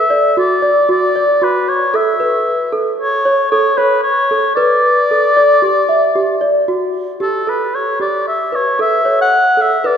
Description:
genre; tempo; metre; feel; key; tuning
contemporary instrumental, contemporary; 114 BPM; 5/4; straight; A mixolydian; A4 = 437 Hz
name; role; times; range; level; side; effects
warm oboe; melody; 0.0-10.0 s; A4 to F#5; -14 LUFS; left 1 dB; none
celesta; arpeggios; 0.0-10.0 s; F#4 to E5; -15 LUFS; equal; none
room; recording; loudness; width
wet church reverb, RT60 3.0 s; recorded in a church or concert hall; -11 LUFS; side -8 dB against mid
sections
0.0-7.2 A section; 7.2-10.0 B section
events
none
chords
0.0 Bm (rootless); 1.9 A; 4.6 A7sus4; 7.2 A7

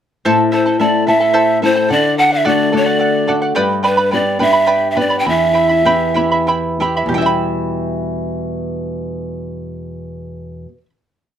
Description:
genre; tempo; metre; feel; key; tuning
andean folk, Andean ensemble; 59-73 BPM (dotted quarters); 6/8; straight; E minor; A4 = 441 Hz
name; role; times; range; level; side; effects
charango; accompaniment; 0.2-10.9 s; E4 to B5; -17 LUFS; right 2 dB; none
flamenco guitar; accompaniment; 0.3-10.8 s; E2 to E5; -18 LUFS; left 2 dB; none
breathy large pan pipes; melody; 0.5-6.5 s; B4 to G5; -14 LUFS; right 1 dB; none
room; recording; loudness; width
light reverb; none; -13 LUFS; side -9 dB against mid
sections
0.3-7.1 A section; 7.1-11.2 final chord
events
slowing down 3.6-7.1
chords
0.3 Am; 1.9 D; 3.6 G; 5.2 Em

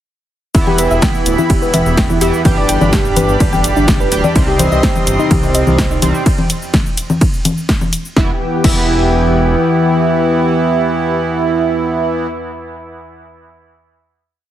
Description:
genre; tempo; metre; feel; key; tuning
melodic techno; 126 BPM; 4/4; straight; E minor; A4 = 440 Hz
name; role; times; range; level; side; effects
lush unison pad; sustained chords; 0.5-11.8 s; E3 to C6; -20 LUFS; left 1 dB; chorus, sidechain pumping
soft round pluck; arpeggios; 0.5-8.8 s; D4 to G5; -19 LUFS; left 1 dB; chorus, sidechain pumping, dub echo
sync-sweep polysynth; stabs; 0.5-12.3 s; C3 to G4; -18 LUFS; right 3 dB; chorus, sidechain pumping, dub echo
dark detuned saw bass; bass; 0.5-9.6 s; D1 to C2; -17 LUFS; equal; sidechain pumping
analog drone; drone; 2.2-11.8 s; E2 to E3; -24 LUFS; left 1 dB; chorus, sidechain pumping
electronic kick drum; drums; 0.5-8.8 s; none; -15 LUFS; equal; overdrive, studio reverb
techno drum kit; drums; 0.5-8.8 s; congas, crash cymbal, hi-hat, ride cymbal, shaker, snare drum; -17 LUFS; left 2 dB; overdrive, studio reverb
room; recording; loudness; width
light reverb; heavily compressed radio sound; -11 LUFS; side -11 dB against mid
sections
0.5-8.2 drop; 8.2-12.0 final chord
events
drop 0.5-8.2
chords
0.5 Em; 4.4 Cm; 6.3 N.C.; 8.2 Em

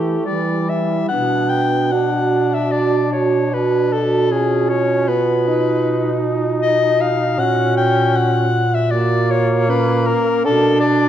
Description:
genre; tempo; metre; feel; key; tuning
classical, lyrical piece for single-reed quartet; 77 BPM; 4/4; uneven beats, rubato; unclear; A4 = 440 Hz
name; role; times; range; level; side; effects
bright soprano saxophone; melody; 0.0-11.1 s; G4 to G5; -19 LUFS; left 4 dB; none
dark clarinet; second line; 0.0-11.1 s; C#4 to F#4; -22 LUFS; right 7 dB; none
warm tenor saxophone; accompaniment; 0.0-11.1 s; G3 to D#4; -22 LUFS; left 1 dB; none
clear bass clarinet; bass; 0.0-11.1 s; A#2 to E3; -20 LUFS; right 2 dB; none
room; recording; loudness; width
wet concert hall reverb, RT60 2.2 s; worn, warbling old tape, cassette tape, warbly pitch drift; -14 LUFS; side -10 dB against mid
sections
0.0-1.1 A section; 1.1-11.1 B section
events
none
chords
0.0 Em; 1.1 Bm; 4.3 C#7/B; 7.4 F#/A#; 10.5 Bm

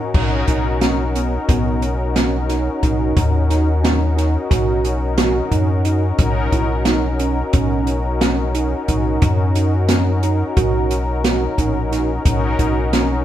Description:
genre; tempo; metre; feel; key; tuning
progressive instrumental, band music in an uneven meter; 178 BPM (eighths); 9/8; straight; B major; A4 = 440 Hz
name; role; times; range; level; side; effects
brassy analog pad; accompaniment; 0.0-13.2 s; C#4 to A#4; -22 LUFS; left 3 dB; chorus
round analog bass; bass; 0.1-13.2 s; A#1 to F#2; -20 LUFS; equal; none
open jazz drum kit; drums; 0.1-13.1 s; crash cymbal, hi-hat, kick drum, snare drum; -19 LUFS; equal; none
mellow tine electric piano; arpeggios; 0.5-13.1 s; B3 to F#4; -23 LUFS; right 6 dB; none
room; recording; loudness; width
light reverb; band playing live in one room; -15 LUFS; side -12 dB against mid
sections
0.1-13.2 A section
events
none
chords
0.1 Bmaj7; 6.2 D#m7/B; 12.3 Bmaj7

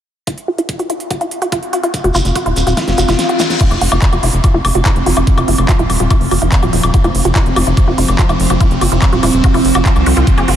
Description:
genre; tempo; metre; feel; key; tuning
psychedelic trance; 144 BPM; 4/4; straight; unclear; A4 = 440 Hz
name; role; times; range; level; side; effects
wide unison pluck; riff; 0.3-10.6 s; F4 to Ab4; -18 LUFS; equal; auto-pan, cassette tape, sidechain pumping, diffuse ambient delay
big-room dance drum kit; drums; 0.3-10.6 s; crash cymbal, handclaps, hi-hat, snare drum, woodblock; -19 LUFS; equal; studio reverb
electronic kick drum; drums; 0.3-10.4 s; none; -13 LUFS; equal; high-pass filter on kick, studio reverb, high-pass filter on room
warbly tape-like pad; texture; 1.7-10.3 s; C4 to C6; -25 LUFS; left 3 dB; none
shekere; percussion; 1.9-3.6 s; none; -24 LUFS; right 2 dB; none
tight sequencer bass; bass; 2.0-10.6 s; Eb1 to C2; -15 LUFS; equal; none
reverse cymbal; sound effects; 3.0-3.6 s; none; -26 LUFS; left 6 dB; none
evolving wavetable pad; sustained chords; 4.6-10.6 s; F3 to C4; -18 LUFS; right 2 dB; phaser, built-in reverb, sidechain pumping
room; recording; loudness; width
moderate huge ambient reverb, RT60 4.0 s; dreamy mix soaked in reverb; -11 LUFS; side -10 dB against mid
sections
0.3-3.6 A section; 3.6-10.6 B section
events
fade-in on ambient pad 0.3-3.6; filter sweep on synth arpeggio sound 0.3-3.6, 3.6-10.6; drum fill 2.8-3.6; reverse cymbal 3.0-3.6; kick drops out 3.2-3.6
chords
0.3 F5

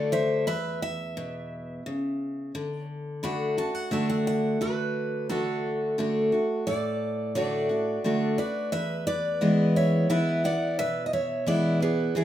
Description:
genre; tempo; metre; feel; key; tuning
country; 87 BPM; 3/4; straight; D lydian; A4 = 440 Hz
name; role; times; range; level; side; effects
picked steel-string acoustic guitar; melody; 0.0-12.2 s; E4 to B5; -29 LUFS; right 1 dB; none
picked steel-string acoustic guitar; accompaniment; 0.0-12.2 s; E2 to F#4; -26 LUFS; equal; none
room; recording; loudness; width
wet studio reverb, RT60 0.6 s; rough home demo mix; -24 LUFS; side -12 dB against mid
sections
0.0-4.6 A section; 4.6-12.2 B section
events
steel-string acoustic guitar solo 0.0-4.6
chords
0.5 E5; 2.5 D; 8.7 E

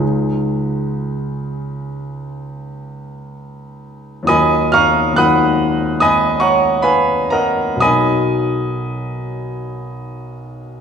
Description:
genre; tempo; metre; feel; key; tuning
classical, impressionist solo piano; 52-77 BPM; 4/4; rubato; Eb minor; A4 = 440 Hz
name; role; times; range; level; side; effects
warm concert grand piano; solo; 0.0-10.8 s; B1 to Gb6; -15 LUFS; equal; none
room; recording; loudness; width
moderate recital hall reverb, RT60 1.5 s; recorded in a church or concert hall, small room ambience; -14 LUFS; side -7 dB against mid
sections
0.0-4.3 A section; 4.3-10.8 B section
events
none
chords
0.0 Dbadd9; 4.3 Ebmadd9; 7.8 Bmaj7

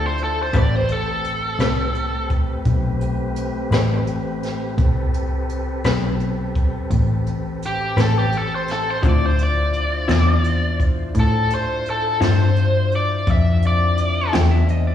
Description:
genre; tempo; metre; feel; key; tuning
slow blues; 57 BPM (dotted quarters); 12/8; straight; A minor; A4 = 439 Hz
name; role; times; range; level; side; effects
biting lead guitar; melody; 0.0-14.3 s; G4 to E5; -22 LUFS; equal; overdrive, slapback echo
tonewheel organ; sustained chords; 0.0-14.9 s; A3 to C5; -29 LUFS; left 1 dB; slow rotary speaker, overdrive
vintage muted picked electric bass; bass; 0.0-14.9 s; A1 to A2; -20 LUFS; left 1 dB; none
jazz brush drum kit; drums; 0.2-14.8 s; hi-hat, kick drum, snare drum; -23 LUFS; equal; none
electric guitar through a small old amp; accompaniment; 0.5-14.6 s; D3 to B4; -25 LUFS; left 5 dB; tremolo, slapback echo
clean lap steel guitar; second line; 14.3-14.9 s; D5 to G5; -28 LUFS; right 3 dB; slapback echo
room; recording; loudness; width
studio reverb; live gig heard through the venue's PA, recital hall reverb; -17 LUFS; side -10 dB against mid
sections
0.0-14.9 A section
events
none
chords
0.0 Dm9; 0.5 Am9; 9.0 Dm9

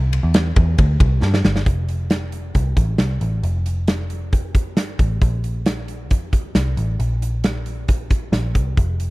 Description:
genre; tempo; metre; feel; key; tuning
jangly indie pop; 135 BPM; 4/4; straight; F major; A4 = 438 Hz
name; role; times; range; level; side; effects
vintage muted picked electric bass; bass; 0.0-9.1 s; F1 to G2; -20 LUFS; equal; none
big rock drum kit; drums; 0.1-9.1 s; hi-hat, kick drum, ride cymbal, snare drum; -18 LUFS; equal; none
room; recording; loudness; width
little or no reverb; dry, close 1970s-style studio recording; -17 LUFS; side -21 dB against mid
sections
0.0-1.7 A section; 1.7-9.1 B section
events
drum fill 1.2-1.7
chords
none

